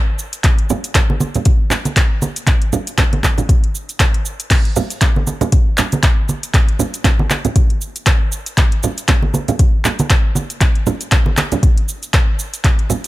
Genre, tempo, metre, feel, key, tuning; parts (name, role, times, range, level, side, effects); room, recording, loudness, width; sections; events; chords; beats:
house; 118 BPM; 4/4; swing 57% on 16ths
afro-pop drum kit; drums; 0.2-13.1 s; crash cymbal, handclaps, hi-hat, shaker; -20 LUFS; equal
electronic kick drum; drums; 0.4-12.8 s; -14 LUFS; equal; overdrive
congas; percussion; 0.4-13.0 s; -19 LUFS; right 3 dB
digital ambience; -13 LUFS; side -17 dB against mid
0.0-13.1 A section
| 0.44 0.95 1.46 1.97 | 2.48 2.98 3.49 4.00 | 4.51 5.02 5.53 6.04 | 6.54 7.05 7.56 8.07 | 8.58 9.09 9.60 10.10 | 10.61 11.12 11.63 12.14 | 12.65